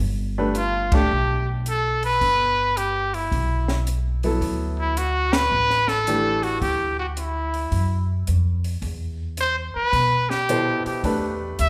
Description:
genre	jazz, small-group swing and bop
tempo	109 BPM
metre	4/4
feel	swing 67% on 8ths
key	D mixolydian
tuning	A4 = 439 Hz
part	upright bass	bass	0.0-11.7 s	G1 to B2	-28 LUFS	equal	none
part	clear grand piano	accompaniment	0.4-6.9, 10.5-11.7 s	B2 to C5	-28 LUFS	equal	none
part	compact cocktail drum kit	drums	0.5-11.7 s	hi-hat, kick drum, ride cymbal, snare drum	-30 LUFS	equal	none
part	breathy trumpet	melody	0.6-11.7 s	E4 to E5	-24 LUFS	equal	none
room	moderate recital hall reverb, RT60 1.6 s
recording	recorded in a church or concert hall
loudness	-22 LUFS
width	mono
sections	0.0-11.7 A section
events	band accent 0.8, 5.2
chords	0.0 Gadd9; 4.4 Dadd9; 8.8 Em7

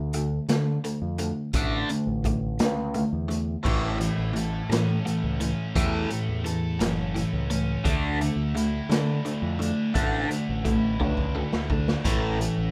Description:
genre	indie rock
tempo	57 BPM (dotted quarters)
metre	6/8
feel	straight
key	A major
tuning	A4 = 440 Hz
part	crunchy overdriven guitar	riff	0.0-12.7 s	A2 to D4	-29 LUFS	equal	phaser
part	growling fingered electric bass	bass	0.0-12.7 s	F#1 to D3	-32 LUFS	equal	overdrive
part	raw garage drum kit	drums	0.1-12.6 s	crash cymbal, hi-hat, kick drum, snare drum, splash cymbal	-31 LUFS	equal	none
part	biting overdriven guitar	riff	3.7-12.7 s	A2 to A4	-37 LUFS	equal	lush chorus, tape echo
part	string machine, cellos	sustained chords	12.1-12.7 s	C#4 to E5	-43 LUFS	equal	none
room	moderate small room reverb, RT60 0.5 s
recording	rough home demo mix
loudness	-26 LUFS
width	mono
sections	0.0-3.7 A section; 3.7-12.7 A section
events	drum fill 11.0-12.1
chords	0.0 D5; 3.7 A; 7.9 Dsus2; 12.1 A

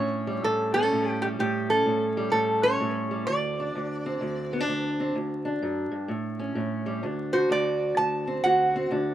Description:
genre	acoustic country blues, solo or duo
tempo	127 BPM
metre	4/4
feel	swing 64% on 8ths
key	D major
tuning	A4 = 439 Hz
part	metal-body resonator slide guitar	melody	0.0-8.9 s	G4 to A5	-25 LUFS	right 1 dB	none
part	fingerpicked steel-string acoustic guitar	accompaniment	0.0-9.1 s	D2 to F#4	-27 LUFS	equal	slapback echo
room	light reverb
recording	recorded outdoors, with no room sound, vinyl crackle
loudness	-24 LUFS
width	side -12 dB against mid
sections	0.0-7.0 A section; 7.0-9.1 B section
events	resonator guitar played with a steel bar solo 7.0-9.1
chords	0.0 A7; 3.3 D7(no3); 6.1 A7; 7.0 D7

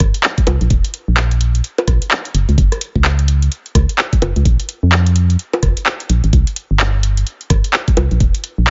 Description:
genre	UK garage, two-step garage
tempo	128 BPM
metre	4/4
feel	swing 61% on 16ths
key	unclear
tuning	A4 = 445 Hz
part	organ-like FM bass	bass	0.0-8.7 s	Eb1 to F2	-16 LUFS	equal	none
part	electronic kick drum	drums	0.0-8.3 s	none	-17 LUFS	equal	none
part	garage drum kit	drums	0.0-8.7 s	bongos, handclaps, hi-hat, rim click	-20 LUFS	equal	none
room	little or no reverb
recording	nothing above 7.6 kHz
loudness	-15 LUFS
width	mono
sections	0.0-8.7 A section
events	none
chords	none

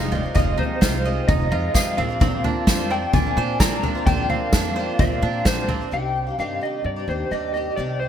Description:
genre	indie folk with a building arrangement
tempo	129 BPM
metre	4/4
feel	straight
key	C minor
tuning	A4 = 435 Hz
part	electric guitar through a small old amp	melody	0.0-8.1 s	C5 to Bb5	-26 LUFS	left 1 dB	tremolo
part	picked swing-style acoustic guitar	accompaniment	0.0-8.1 s	F2 to G4	-32 LUFS	left 5 dB	analog chorus
part	warm upright piano	accompaniment	0.0-5.9 s	F1 to F5	-33 LUFS	right 6 dB	none
part	pedal harmonium	sustained chords	0.0-5.9 s	C3 to Eb4	-36 LUFS	left 1 dB	none
part	mandolin	arpeggios	0.0-5.9 s	C4 to Eb5	-28 LUFS	right 7 dB	none
part	upright bass	bass	0.0-8.1 s	F1 to Bb2	-28 LUFS	equal	none
part	unplugged drum kit	drums	0.1-5.8 s	kick drum, snare drum, toms	-21 LUFS	equal	gated reverb
part	tambourine	percussion	0.8-5.6 s	none	-32 LUFS	left 11 dB	none
part	fingerpicked steel-string acoustic guitar	accompaniment	5.9-8.1 s	G2 to G4	-31 LUFS	left 3 dB	ensemble chorus
room	light reverb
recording	bright 1980s-style digital production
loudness	-19 LUFS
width	side -9 dB against mid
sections	0.0-5.9 A section; 5.9-8.1 B section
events	none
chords	0.0 Fm7; 2.0 Bbadd9; 5.9 Cmadd9

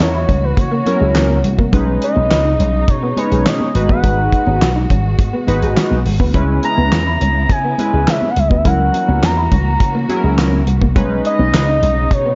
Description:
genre	early-eighties boogie funk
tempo	104 BPM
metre	4/4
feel	straight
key	unclear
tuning	A4 = 439 Hz
part	expressive portamento lead	melody	0.0-12.3 s	B4 to A#5	-21 LUFS	equal	chorus
part	chorused polysynth	accompaniment	0.0-11.6 s	F#3 to C#5	-22 LUFS	equal	none
part	dark studio string section	sustained chords	0.0-12.3 s	B2 to F#4	-28 LUFS	equal	none
part	electric guitar through a small old amp	riff	0.0-12.3 s	G#3 to E4	-27 LUFS	equal	ensemble chorus
part	slap bass with an envelope filter	bass	0.0-12.3 s	G#1 to C#3	-19 LUFS	equal	tube saturation
part	damped 70s drum kit	drums	0.0-12.2 s	handclaps, hi-hat, kick drum, snare drum	-19 LUFS	equal	gated reverb
part	congas	percussion	0.0-12.0 s	none	-26 LUFS	equal	none
room	small room ambience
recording	nothing above 7.6 kHz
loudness	-15 LUFS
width	mono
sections	0.0-12.3 A section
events	none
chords	0.0 F#7/C#; 1.7 B69; 3.7 G#m7; 6.3 C#m7; 8.7 F#7/C#; 11.0 B69

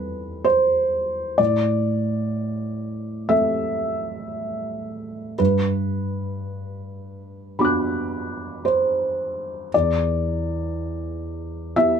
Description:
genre	neoclassical minimalist piano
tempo	55-64 BPM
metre	4/4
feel	rubato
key	E minor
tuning	A4 = 440 Hz
part	felt-muted upright piano	solo	0.0-12.0 s	E2 to F#6	-21 LUFS	right 1 dB	none
room	light reverb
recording	close, detailed microphones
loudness	-21 LUFS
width	side -7 dB against mid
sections	0.0-9.7 A section; 9.7-12.0 A section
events	none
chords	0.0 Cmaj7/E; 1.4 Am; 5.4 Gmaj7; 9.7 E7(no3)

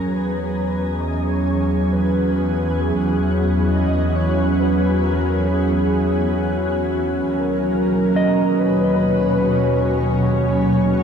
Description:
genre	ambient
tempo	67 BPM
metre	4/4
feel	straight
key	unclear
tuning	A4 = 440 Hz
part	breathy flute-like synth lead	melody	0.0-10.4 s	G#4 to D#5	-26 LUFS	left 1 dB	ensemble chorus, shimmer reverb, ping-pong delay
part	shimmering ambient pad	sustained chords	0.0-11.0 s	B2 to A#5	-23 LUFS	left 1 dB	chorus, built-in reverb, shimmer reverb
part	mellow electric guitar	arpeggios	0.0-0.5, 8.2-11.0 s	C#5 to D#5	-28 LUFS	right 2 dB	shimmer reverb, ping-pong delay
part	warm symphonic double bass section	bass	0.0-11.0 s	D#2 to E2	-24 LUFS	equal	none
part	analog drone	drone	0.0-11.0 s	F#3 to C#4	-20 LUFS	right 1 dB	chorus
room	wet concert hall reverb, RT60 2.0 s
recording	cassette tape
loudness	-17 LUFS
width	side -7 dB against mid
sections	0.0-11.0 A section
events	fade-in on ambient pad 0.0-11.0; fade-in on soft synth lead 0.0-11.0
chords	0.1 E; 7.3 Bmaj7/D#

